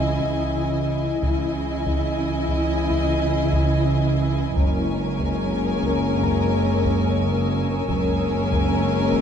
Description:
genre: cinematic, suspense film score.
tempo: 72 BPM.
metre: 4/4.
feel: straight.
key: unclear.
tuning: A4 = 440 Hz.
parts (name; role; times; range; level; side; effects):
clear studio violin section; melody; 0.0-9.2 s; G#5; -34 LUFS; left 1 dB; none.
clear studio violin section; second line; 0.0-9.2 s; A#4 to D#5; -32 LUFS; equal; none.
rich studio viola section; accompaniment; 0.0-9.2 s; C#4 to E4; -29 LUFS; right 2 dB; none.
ethereal airy pad; sustained chords; 0.0-9.2 s; E4 to G#5; -30 LUFS; left 4 dB; ensemble chorus, built-in reverb, phaser.
warm French horn section; sustained chords; 0.0-9.2 s; E3 to D#5; -26 LUFS; left 5 dB; none.
bright studio double bass section; bass; 0.0-9.2 s; F#1 to C#2; -26 LUFS; right 2 dB; none.
rich studio cello section; bass; 0.0-9.2 s; F#2 to C#3; -27 LUFS; right 4 dB; none.
concert harp; texture; 0.0-9.2 s; A4 to A#6; -38 LUFS; left 8 dB; none.
taiko ensemble; drums; 0.2-9.2 s; none; -27 LUFS; equal; none.
rich studio violin section; texture; 4.6-9.2 s; C#6 to E6; -40 LUFS; left 1 dB; none.
room: moderate scoring stage reverb, RT60 1.5 s.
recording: dark, warm production.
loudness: -19 LUFS.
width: side -8 dB against mid.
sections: 0.0-9.2 A section.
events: none.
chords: 0.0 C#madd9; 4.6 F#add9.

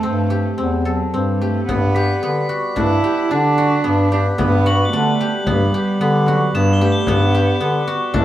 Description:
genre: contemporary instrumental, chamber music in an uneven meter.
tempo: 111 BPM.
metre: 5/4.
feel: straight.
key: G major.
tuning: A4 = 441 Hz.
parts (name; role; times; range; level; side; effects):
warm cello; melody; 0.0-8.2 s; F#3 to E4; -21 LUFS; right 4 dB; none.
guzheng; arpeggios; 0.0-8.2 s; B3 to A4; -22 LUFS; left 1 dB; none.
warm bass clarinet; bass; 0.0-8.2 s; E2 to D3; -18 LUFS; left 1 dB; none.
pedal harmonium; sustained chords; 1.7-8.2 s; G3 to B5; -26 LUFS; left 1 dB; none.
frame drum; percussion; 1.7-8.2 s; none; -22 LUFS; left 2 dB; none.
crotales; texture; 1.9-8.2 s; B6 to A7; -28 LUFS; left 2 dB; none.
room: wet studio reverb, RT60 0.7 s.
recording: heard from further back in the room.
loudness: -15 LUFS.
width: side -13 dB against mid.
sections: 0.0-1.7 A section; 1.7-8.2 B section.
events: none.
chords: 0.0 Am7; 1.7 Gmaj7.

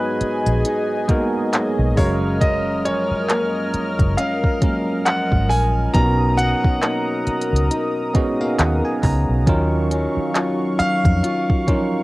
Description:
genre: contemporary R&B.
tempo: 68 BPM.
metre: 4/4.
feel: swing 58% on 16ths.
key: unclear.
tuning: A4 = 440 Hz.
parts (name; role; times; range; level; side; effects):
clear concert grand piano; melody; 0.0-12.0 s; Cb5 to A#5; -24 LUFS; equal; tape echo.
bell-like tine electric piano; accompaniment; 0.0-12.0 s; F3 to A#5; -23 LUFS; right 2 dB; slow stereo tremolo, cassette tape.
warm analog pad; sustained chords; 0.0-12.0 s; Gb3 to F6; -26 LUFS; left 1 dB; chorus, cassette tape.
nylon-string guitar; arpeggios; 0.0-12.0 s; Gb2 to F4; -27 LUFS; left 3 dB; cassette tape, tape echo.
celesta; texture; 0.0-12.0 s; Eb5 to Ab5; -39 LUFS; equal; none.
vintage muted fingered electric bass; bass; 0.2-11.2 s; Gb1 to F2; -20 LUFS; equal; none.
smooth R&B drum kit; drums; 0.2-11.9 s; handclaps, hi-hat, kick drum, rim click; -19 LUFS; equal; cassette tape.
room: little or no reverb.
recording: home recording on cassette.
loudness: -17 LUFS.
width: side -20 dB against mid.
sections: 0.0-12.0 A section.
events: tine electric piano fill 7.7-9.5.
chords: 0.0 Abm7; 2.0 Gbmaj7; 5.9 Bmaj7; 9.5 Ebm9.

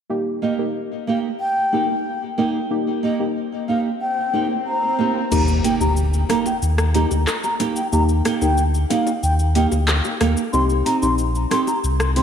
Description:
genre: dancehall.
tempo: 92 BPM.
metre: 4/4.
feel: straight.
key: unclear.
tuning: A4 = 440 Hz.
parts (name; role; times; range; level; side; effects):
deep mellow chord stab; accompaniment; 0.1-12.2 s; Bb3 to G4; -25 LUFS; left 3 dB; chorus.
mellow baroque flute; melody; 0.4-12.2 s; Eb5 to C6; -24 LUFS; left 1 dB; ping-pong delay.
nylon-string guitar; arpeggios; 0.4-12.2 s; Bb3 to G4; -24 LUFS; right 5 dB; lush chorus, ping-pong delay.
swell and impact; sound effects; 3.9-7.9 s; none; -29 LUFS; equal; none.
sub bass with octave; bass; 5.3-12.2 s; Bb1 to Eb2; -19 LUFS; equal; none.
afro-pop drum kit; drums; 5.3-12.2 s; crash cymbal, handclaps, hi-hat, rim click, shaker; -26 LUFS; left 1 dB; none.
bongos; percussion; 5.6-11.8 s; none; -33 LUFS; left 10 dB; none.
room: moderate lush hall reverb, RT60 2.5 s.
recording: dreamy mix soaked in reverb.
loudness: -18 LUFS.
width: side -8 dB against mid.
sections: 0.1-5.3 A section; 5.3-12.2 B section.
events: swell 3.9-5.3; kick muted 5.3-12.2; impact 5.3-7.9.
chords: 0.1 Eb; 10.5 Cm.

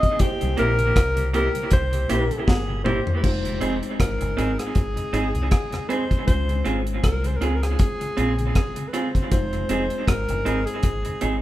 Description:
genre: lovers rock reggae.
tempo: 79 BPM.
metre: 4/4.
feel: swing 56% on 16ths.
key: F minor.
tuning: A4 = 439 Hz.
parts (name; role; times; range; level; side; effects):
warm alto saxophone; melody; 0.0-11.3 s; G4 to Eb5; -27 LUFS; equal; none.
tine electric piano; accompaniment; 0.0-11.4 s; G3 to G5; -33 LUFS; left 3 dB; overdrive, fast stereo tremolo, tape echo.
deep reggae drum kit; drums; 0.0-11.4 s; crash cymbal, hi-hat, kick drum, rim click, snare drum, toms; -22 LUFS; equal; none.
mellow tonewheel organ; accompaniment; 0.4-11.3 s; F2 to F4; -36 LUFS; left 1 dB; none.
deep dub fingered electric bass; bass; 0.4-11.4 s; F1 to Db2; -26 LUFS; equal; none.
electric guitar through a small old amp; stabs; 0.6-11.4 s; Bb3 to Ab4; -27 LUFS; right 2 dB; tape echo.
room: moderate large studio reverb, RT60 1.1 s.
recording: band playing live in one room.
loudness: -20 LUFS.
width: side -15 dB against mid.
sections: 0.0-3.2 A section; 3.2-11.4 B section.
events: drum fill 2.5-3.2.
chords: 0.2 C7; 3.2 Fm7; 6.3 Dbmaj7; 9.3 Fm7.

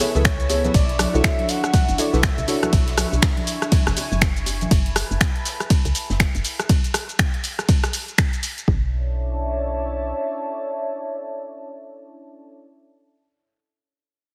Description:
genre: deep house.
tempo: 121 BPM.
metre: 4/4.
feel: swing 60% on 16ths.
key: B dorian.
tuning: A4 = 440 Hz.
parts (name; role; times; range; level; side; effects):
dark analog pad; sustained chords; 0.0-12.6 s; D4 to C#6; -32 LUFS; equal; chorus, phaser, vintage 12-bit sampler grit, sidechain pumping.
deep mellow chord stab; stabs; 0.0-2.7 s; B3 to C#5; -27 LUFS; equal; chorus, vintage 12-bit sampler grit, sidechain pumping, delay.
deep house drum kit; drums; 0.0-8.7 s; finger snaps, hi-hat, ride cymbal, rim click, shaker; -26 LUFS; equal; none.
jazz brush drum kit; drums; 0.0-6.6 s; hi-hat, snare drum; -42 LUFS; equal; none.
bongos and congas; percussion; 0.0-4.7 s; none; -33 LUFS; equal; sidechain pumping on perc.
rich studio violin section; texture; 0.0-4.7 s; E4 to E5; -39 LUFS; equal; none.
woody FM bass; bass; 0.1-10.1 s; F#1 to C#2; -26 LUFS; equal; sidechain pumping.
warm velvety synth lead; melody; 0.2-2.7 s; C#5 to F#5; -30 LUFS; equal; chorus, delay.
electronic kick drum; drums; 0.2-8.8 s; none; -22 LUFS; equal; none.
room: light reverb, small room reverb.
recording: heavily compressed radio sound.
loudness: -21 LUFS.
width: mono.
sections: 0.0-8.7 A section; 8.7-12.6 B section.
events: drop 0.0-8.7.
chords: 0.0 F#m11 (rootless); 0.7 Bm11; 4.7 F#m11; 8.7 Bm11.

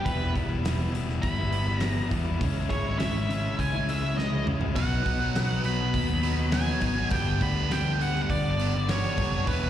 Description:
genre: quiet-loud alternative rock.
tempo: 102 BPM.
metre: 4/4.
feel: straight.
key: unclear.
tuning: A4 = 440 Hz.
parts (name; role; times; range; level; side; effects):
octave-fuzz lead guitar; melody; 0.0-9.7 s; B4 to B5; -31 LUFS; right 2 dB; distortion, plate reverb, slapback echo, digital delay.
electric guitar through a small old amp; arpeggios; 0.0-4.8 s; E2 to E4; -37 LUFS; right 4 dB; tremolo, plate reverb, slapback echo, digital delay.
thick fuzz guitar; riff; 0.0-9.7 s; G2 to E4; -30 LUFS; left 6 dB; distortion, slapback echo.
fingered electric bass; bass; 0.1-9.7 s; E1 to E2; -29 LUFS; equal; none.
loose indie drum kit; drums; 0.1-9.6 s; hi-hat, kick drum, snare drum, toms; -32 LUFS; equal; none.
cranked stack guitar; riff; 4.8-9.7 s; G2 to E4; -34 LUFS; right 14 dB; overdrive, slapback echo.
room: light reverb.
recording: live gig heard through the venue's PA, recital hall reverb.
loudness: -24 LUFS.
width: side -11 dB against mid.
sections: 0.0-9.7 A section.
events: lead electric guitar solo 0.0-9.7; drum fill 4.2-4.8.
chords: 0.1 Em; 2.4 C#m; 4.8 B; 7.1 G.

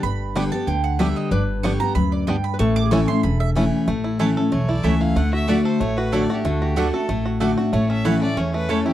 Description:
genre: bluegrass.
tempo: 187 BPM.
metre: 4/4.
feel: straight.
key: A mixolydian.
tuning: A4 = 441 Hz.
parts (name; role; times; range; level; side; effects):
lap resonator guitar; second line; 0.0-3.7 s; G#4 to D5; -31 LUFS; left 3 dB; none.
picked steel-string acoustic guitar; accompaniment; 0.0-8.9 s; E2 to G4; -20 LUFS; left 2 dB; none.
mandolin; stabs; 0.0-8.8 s; A3 to D6; -27 LUFS; right 8 dB; none.
upright bass; bass; 0.0-8.8 s; E1 to E2; -24 LUFS; equal; none.
bluegrass banjo; melody; 0.4-8.9 s; A3 to A4; -27 LUFS; right 3 dB; none.
clear fiddle; melody; 4.5-8.9 s; F#4 to F#5; -30 LUFS; left 1 dB; none.
room: light reverb.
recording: dry, close 1970s-style studio recording.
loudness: -18 LUFS.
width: side -12 dB against mid.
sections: 0.0-3.9 A section; 3.9-8.9 B section.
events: mandolin solo 0.0-3.9.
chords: 0.0 G; 2.6 A; 5.2 D; 7.7 A.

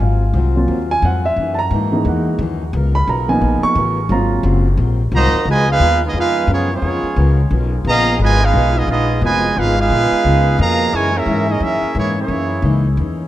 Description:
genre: jazz.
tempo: 176 BPM.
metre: 4/4.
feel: swing 62% on 8ths.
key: Db major from 5.5 s.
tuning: A4 = 439 Hz.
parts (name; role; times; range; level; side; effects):
fingerpicked steel-string acoustic guitar; accompaniment; 0.0-13.2 s; Gb2 to Bb4; -26 LUFS; left 5 dB; none.
warm grand piano; accompaniment; 0.0-4.6 s; Fb3 to Db6; -18 LUFS; right 2 dB; none.
mellow trombone section; sustained chords; 0.0-13.3 s; Cb3 to Bb4; -32 LUFS; left 2 dB; none.
upright bass; bass; 0.0-13.3 s; F1 to Ab2; -17 LUFS; left 1 dB; none.
warm trumpet section; melody; 5.1-12.8 s; Bb3 to Bb5; -17 LUFS; right 2 dB; none.
warm trombone section; second line; 5.1-12.8 s; Cb3 to F4; -21 LUFS; right 3 dB; none.
room: light reverb, studio reverb.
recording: rough home demo mix.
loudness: -13 LUFS.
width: side -14 dB against mid.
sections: 0.0-5.5 A section; 5.5-13.3 B section.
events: grand piano solo 0.0-5.5.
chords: 0.0 Ab13; 1.4 Gb13; 2.7 Db13; 4.1 Ab13; 5.5 Db13; 10.9 Gb13.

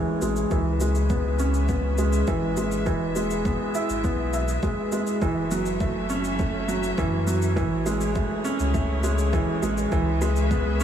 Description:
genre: piano and strings electronica.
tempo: 102 BPM.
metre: 4/4.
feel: straight.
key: F# minor.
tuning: A4 = 439 Hz.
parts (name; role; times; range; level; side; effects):
rich string quartet; sustained chords; 0.0-10.8 s; C#3 to E5; -36 LUFS; left 2 dB; sidechain pumping.
clear baby grand piano; riff; 0.0-10.8 s; E3 to E5; -24 LUFS; right 1 dB; low-pass filter, diffuse ambient delay.
warm sub bass; bass; 0.2-10.8 s; E1 to F#2; -26 LUFS; left 1 dB; tube saturation, sidechain pumping.
shaker; drums; 0.2-10.8 s; none; -40 LUFS; left 3 dB; overdrive.
electronic kick drum; drums; 0.5-10.6 s; none; -28 LUFS; equal; overdrive.
room: moderate huge ambient reverb, RT60 7.7 s.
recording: dreamy mix soaked in reverb, small room ambience.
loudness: -22 LUFS.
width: side -9 dB against mid.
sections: 0.0-10.8 A section.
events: fade-in on string quartet 0.0-10.8; filter sweep on grand piano 0.0-10.8.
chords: 0.0 Amaj7; 0.5 C#m7; 2.9 E; 5.2 F#m7; 7.6 Amaj7; 9.9 C#m7.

